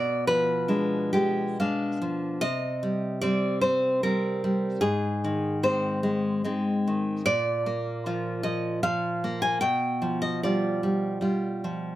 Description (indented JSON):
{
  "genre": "romantic piece for solo classical guitar",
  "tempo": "75 BPM",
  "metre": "3/4",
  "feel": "rubato",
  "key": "C minor",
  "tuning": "A4 = 436 Hz",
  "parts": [
    { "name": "nylon-string guitar", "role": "solo", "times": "0.0-12.0 s", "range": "Ab2 to Ab5", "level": "-24 LUFS", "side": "equal", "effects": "none" }
  ],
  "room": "moderate studio reverb, RT60 0.7 s",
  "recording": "none",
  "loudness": "-24 LUFS",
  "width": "side -14 dB against mid",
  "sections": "0.0-12.0 A section",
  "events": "none",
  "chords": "0.0 Bdim7; 2.4 Cm; 4.8 Ab; 7.3 Bb; 9.6 G7/B"
}